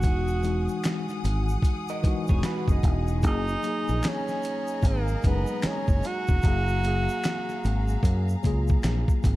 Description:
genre	R&B, neo-soul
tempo	75 BPM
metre	4/4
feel	swing 62% on 16ths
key	F# major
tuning	A4 = 439 Hz
part	warm tenor saxophone	melody	0.0-8.4 s	A#3 to F#4	-30 LUFS	right 3 dB	slapback echo
part	mellow tine electric piano	accompaniment	0.0-9.4 s	E3 to E#5	-32 LUFS	left 2 dB	medium stereo tremolo
part	rich studio string section	sustained chords	0.0-9.4 s	G#4 to D#6	-38 LUFS	left 4 dB	none
part	fingered electric bass	bass	0.0-9.4 s	E1 to F#2	-26 LUFS	equal	none
part	dusty soul sampler-style drum kit	drums	0.0-9.4 s	hi-hat, kick drum, snare drum	-25 LUFS	equal	none
part	egg shaker and finger snaps	percussion	0.0-9.4 s	none	-45 LUFS	left 2 dB	none
part	electric guitar through a small old amp	second line	1.9-3.2 s	D#4 to D#5	-36 LUFS	right 6 dB	spring reverb
room	studio ambience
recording	dark, warm production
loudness	-23 LUFS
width	side -17 dB against mid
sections	0.0-9.4 A section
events	none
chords	0.0 Emaj9; 3.2 F#69; 6.4 F#maj9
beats	| 0.04 0.83 1.64 2.44 | 3.23 4.04 4.83 5.63 | 6.43 7.24 8.04 8.84

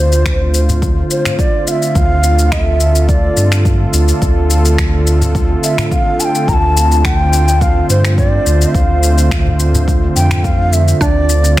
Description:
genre	organic downtempo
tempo	106 BPM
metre	4/4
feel	straight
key	D minor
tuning	A4 = 440 Hz
part	mellow bansuri	melody	0.0-11.6 s	C5 to Bb5	-18 LUFS	equal	vintage 12-bit sampler grit, digital delay
part	warm analog pad	sustained chords	0.0-11.6 s	D3 to C5	-17 LUFS	right 2 dB	chorus, vintage 12-bit sampler grit, sidechain pumping
part	warm sub bass	bass	0.0-11.6 s	D2 to G2	-13 LUFS	equal	sidechain pumping
part	electronic shaker and finger snaps	drums	0.1-11.6 s	none	-21 LUFS	left 4 dB	overdrive, small room ambience, soft clipping on snare
part	electronic kick drum	drums	0.3-11.6 s	none	-16 LUFS	equal	small room ambience
part	udu	percussion	0.7-1.4, 5.2-5.9, 9.5-10.4 s	none	-23 LUFS	left 2 dB	none
part	mallet-like synth pluck	arpeggios	11.0-11.6 s	D4	-19 LUFS	right 3 dB	chorus, digital delay
room	light reverb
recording	dense, heavily limited modern master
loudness	-10 LUFS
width	side -15 dB against mid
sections	0.0-11.6 A section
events	none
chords	0.0 Dm7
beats	0.26 0.82 1.39 | 1.95 2.52 3.09 3.65 | 4.22 4.79 5.35 5.92 | 6.48 7.05 7.62 8.18 | 8.75 9.31 9.88 10.45 | 11.01 11.58

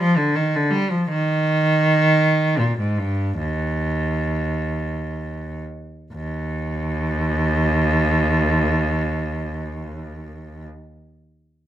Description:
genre	classical, baroque-style suite movement for unaccompanied cello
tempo	39-58 BPM (dotted quarters)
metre	12/8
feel	rubato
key	Eb major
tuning	A4 = 441 Hz
part	clear cello	solo	0.0-10.7 s	Eb2 to G3	-19 LUFS	equal	none
room	moderate stone room reverb, RT60 1.0 s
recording	minimal, uncompressed stereo recording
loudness	-18 LUFS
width	side -11 dB against mid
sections	0.0-6.2 A section; 6.2-11.7 B section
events	slowing down 0.0-6.2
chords	none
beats	| 1.06 2.19 3.39 4.70 | 6.16 7.63 9.09 10.56

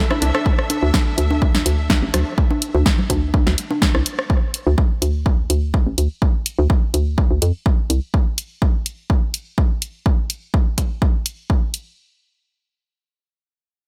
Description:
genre	minimal techno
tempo	125 BPM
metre	4/4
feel	straight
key	unclear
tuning	A4 = 440 Hz
part	dark chamber string section	texture	0.0-4.3 s	D4 to E5	-33 LUFS	equal	sidechain pumping
part	electronic rim click and congas	percussion	0.1-4.3 s	none	-26 LUFS	equal	overdrive, analog delay
part	hollow knocking FM bass	bass	0.2-8.0 s	A1 to F2	-20 LUFS	equal	tube saturation, sidechain pumping
part	punchy analog drum machine	drums	0.2-11.8 s	hi-hat, snare drum	-24 LUFS	equal	none
part	electronic kick drum	drums	0.5-11.6 s	none	-20 LUFS	equal	none
room	little or no reverb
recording	none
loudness	-19 LUFS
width	mono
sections	0.0-12.0 A section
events	fade-out on string section 0.0-4.3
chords	0.0 D5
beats	| 0.46 0.94 1.42 1.90 | 2.38 2.86 3.34 3.82 | 4.30 4.78 5.26 5.74 | 6.22 6.70 7.18 7.66 | 8.14 8.62 9.10 9.58 | 10.06 10.54 11.02 11.50

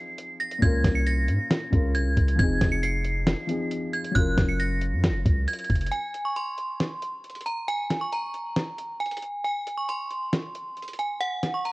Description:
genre	hip hop, trap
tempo	136 BPM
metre	4/4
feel	half-time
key	unclear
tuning	A4 = 437 Hz
part	metallic FM bell	melody	0.0-11.7 s	Gb5 to Db7	-29 LUFS	right 1 dB	chorus
part	dark baby grand piano	accompaniment	0.0-5.9 s	Bb2 to Bb4	-30 LUFS	left 2 dB	none
part	dusty soul sampler-style drum kit	drums	0.2-11.7 s	hi-hat, kick drum, snare drum	-25 LUFS	equal	vintage 12-bit sampler grit
part	long sustained 808-style bass	bass	0.6-5.9 s	F1 to Ab2	-25 LUFS	equal	none
room	little or no reverb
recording	worn, warbling old tape, cassette tape, warbly pitch drift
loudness	-24 LUFS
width	side -21 dB against mid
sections	0.0-5.9 A section; 5.9-11.7 B section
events	break 5.9-11.7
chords	0.0 Fm7; 0.6 Db6; 2.4 Fm7; 4.2 Gbmaj7; 5.9 N.C.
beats	0.18 | 0.62 1.06 1.51 1.95 | 2.39 2.83 3.27 3.71 | 4.15 4.59 5.04 5.48 | 5.92 6.36 6.80 7.24 | 7.68 8.12 8.56 9.01 | 9.45 9.89 10.33 10.77 | 11.21 11.65

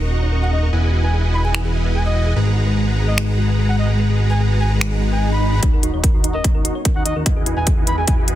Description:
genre	future bass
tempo	147 BPM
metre	4/4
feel	half-time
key	G# minor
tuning	A4 = 438 Hz
part	ethereal airy pad	sustained chords	0.0-8.4 s	E3 to G#5	-32 LUFS	right 1 dB	none
part	thumb-piano-like synth pluck	arpeggios	0.0-8.3 s	F#4 to C#5	-32 LUFS	right 3 dB	chorus, cassette tape, sidechain pumping, ping-pong delay
part	dense compressed supersaw	riff	0.0-8.4 s	G#3 to C#6	-24 LUFS	equal	sidechain pumping, low-pass filter
part	fat analog bass	bass	0.0-8.3 s	D#1 to D#2	-18 LUFS	equal	sidechain pumping
part	trumpet with bucket mute	melody	0.4-8.1 s	D#5 to B5	-27 LUFS	equal	sidechain pumping, low-pass filter, ping-pong delay
part	trap drum kit	drums	1.5-8.4 s	finger snaps, hi-hat	-23 LUFS	left 1 dB	soft clipping on snare, high-pass filter on snare, high-pass filter on hats
part	swell and riser	sound effects	4.9-8.4 s	none	-31 LUFS	equal	none
part	electronic kick drum	drums	5.6-8.2 s	none	-17 LUFS	equal	overdrive
room	little or no reverb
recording	dense, heavily limited modern master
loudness	-15 LUFS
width	side -13 dB against mid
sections	0.0-5.6 A section; 5.6-8.4 B section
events	swell 4.9-5.6; build-up 5.6-8.4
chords	0.0 D#m7; 0.7 Emaj9; 2.4 G#m7; 5.6 D#m7; 7.3 Emaj9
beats	0.32 | 0.73 1.14 1.54 1.95 | 2.36 2.77 3.18 3.59 | 3.99 4.40 4.81 5.22 | 5.63 6.04 6.44 6.85 | 7.26 7.67 8.08

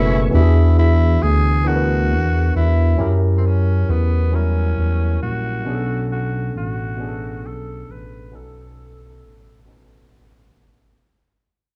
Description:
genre	R&B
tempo	45 BPM (dotted quarters)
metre	6/8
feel	straight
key	unclear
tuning	A4 = 440 Hz
part	growling tenor saxophone	melody	0.0-10.1 s	B3 to B4	-28 LUFS	equal	low-pass filter
part	barky tine electric piano	accompaniment	0.0-11.0 s	B2 to A5	-26 LUFS	equal	low-pass filter
part	smooth synth bass	bass	0.0-11.0 s	F#1 to F#2	-19 LUFS	equal	none
room	digital ambience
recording	dry, gritty hardware recording, studio reverb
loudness	-18 LUFS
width	mono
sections	0.3-11.0 A section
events	fade-out 0.3-11.0; filter sweep 0.3-11.0; tine electric piano fill 9.7-11.0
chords	0.3 E9; 3.0 F#7b9; 5.7 Bm7; 8.3 B9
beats	| 0.32 1.65 | 2.99 4.32 | 5.65 6.99 | 8.32 9.65

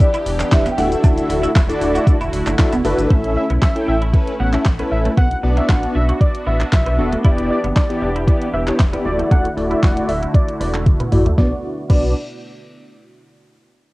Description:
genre	dance-pop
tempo	116 BPM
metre	4/4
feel	straight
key	B minor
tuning	A4 = 441 Hz
part	marimba with medium mallets	melody	0.0-2.5 s	D5 to G5	-22 LUFS	equal	cassette tape, tape echo
part	big bright polysynth	accompaniment	0.0-12.1 s	A3 to G5	-21 LUFS	left 1 dB	sidechain pumping, low-pass filter, cassette tape
part	sweeping resonant pad	sustained chords	0.0-11.6 s	B2 to G4	-26 LUFS	equal	chorus, sidechain pumping, low-pass filter, cassette tape
part	smooth R&B drum kit	drums	0.0-12.0 s	crash cymbal, handclaps, hi-hat, kick drum, shaker, snare drum, toms	-15 LUFS	equal	cassette tape
part	twelve-string electric guitar	riff	0.1-12.1 s	A3 to F#4	-27 LUFS	right 2 dB	ensemble chorus, low-pass filter, cassette tape
part	sub bass with octave	bass	0.3-12.1 s	D1 to B1	-21 LUFS	equal	sidechain pumping
part	fat analog lead	melody	3.4-12.1 s	D5 to F#5	-25 LUFS	equal	low-pass filter, cassette tape, tape echo
room	little or no reverb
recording	home recording on cassette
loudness	-14 LUFS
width	side -20 dB against mid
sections	0.0-3.1 A section; 3.1-11.4 B section; 11.4-13.4 C section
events	filter sweep 3.1-11.4; drum fill 10.9-11.4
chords	0.0 Em7; 0.8 Dadd9; 3.1 A; 5.2 Bm; 7.2 Em7; 9.1 Dadd9; 11.4 Bm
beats	0.00 0.52 | 1.04 1.55 2.07 2.59 | 3.11 3.62 4.14 4.66 | 5.17 5.69 6.21 6.73 | 7.24 7.76 8.28 8.79 | 9.31 9.83 10.35 10.86 | 11.38 11.90

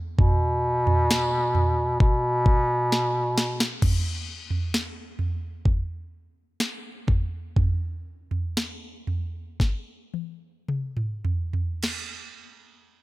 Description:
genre	pop ballad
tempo	51-66 BPM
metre	4/4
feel	straight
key	unclear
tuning	A4 = 436 Hz
part	warm bass clarinet	bass	0.2-3.8 s	B2	-23 LUFS	equal	none
part	smooth R&B drum kit	drums	0.2-12.1 s	crash cymbal, kick drum, snare drum, toms	-24 LUFS	equal	none
room	little or no reverb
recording	none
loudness	-23 LUFS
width	side -18 dB against mid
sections	0.0-3.8 A section; 3.8-11.8 B section; 11.8-13.0 C section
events	drum fill 2.9-3.8, 9.6-11.8; slowing down 3.8-11.8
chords	none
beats	| 0.18 1.09 2.00 2.91 | 3.82 4.73 5.66 6.60 | 7.57 8.56 9.60 10.69 | 11.83

